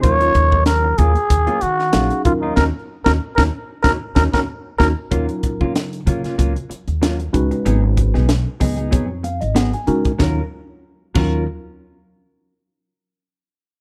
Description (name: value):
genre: electric jazz fusion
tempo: 94 BPM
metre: 4/4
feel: swing 55% on 16ths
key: Eb minor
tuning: A4 = 438 Hz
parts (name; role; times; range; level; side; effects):
- trumpet with cup mute; melody; 0.0-4.9 s; Eb4 to Db5; -21 LUFS; equal; none
- tine electric piano; accompaniment; 0.0-11.5 s; Gb3 to Ab5; -25 LUFS; equal; phaser
- mellow electric guitar; stabs; 0.0-11.4 s; Gb3 to Bb4; -27 LUFS; equal; lush chorus
- upright bass; bass; 0.0-11.5 s; Ab1 to Eb3; -22 LUFS; equal; none
- crisp fusion drum kit; drums; 0.0-11.3 s; crash cymbal, hi-hat, kick drum, snare drum; -22 LUFS; equal; none
room: small room ambience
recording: none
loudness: -18 LUFS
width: mono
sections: 0.0-5.1 A section; 5.1-10.2 B section; 10.2-12.7 C section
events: drum fill 2.6-5.1; band accent 2.6-5.1; tine electric piano fill 3.8-5.1, 8.3-10.2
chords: 0.0 Ebm9; 7.3 Db9sus4; 10.2 Ebm9